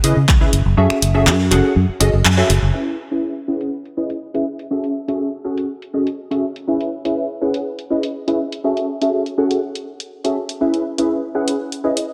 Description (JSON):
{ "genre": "filtered disco house", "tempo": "122 BPM", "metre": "4/4", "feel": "straight", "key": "C# minor", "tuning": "A4 = 440 Hz", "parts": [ { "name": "funky polysynth comp", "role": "accompaniment", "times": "0.0-12.0 s", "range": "C#4 to F#5", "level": "-21 LUFS", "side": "equal", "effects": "chorus, phaser, cassette tape, sidechain pumping, low-pass filter" }, { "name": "fingered electric bass", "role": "bass", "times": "0.0-2.7 s", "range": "F#1 to C#3", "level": "-17 LUFS", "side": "equal", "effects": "sidechain pumping, low-pass filter" }, { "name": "punchy analog drum machine", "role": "drums", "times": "0.0-12.1 s", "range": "finger snaps, handclaps, hi-hat", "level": "-23 LUFS", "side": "equal", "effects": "overdrive, sidechain pumping on hats, low-pass filter on hats, low-pass filter on snare" } ], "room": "moderate lush hall reverb, RT60 1.9 s", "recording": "none", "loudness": "-19 LUFS", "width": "mono", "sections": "0.0-2.7 A section; 2.7-12.1 B section", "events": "band accent 2.3; filter sweep on drum 2.7-12.1", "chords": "0.0 C#m7; 0.5 F#m9; 2.7 C#m7; 4.5 F#m9; 6.7 C#m7; 8.4 F#m9; 10.6 C#m7" }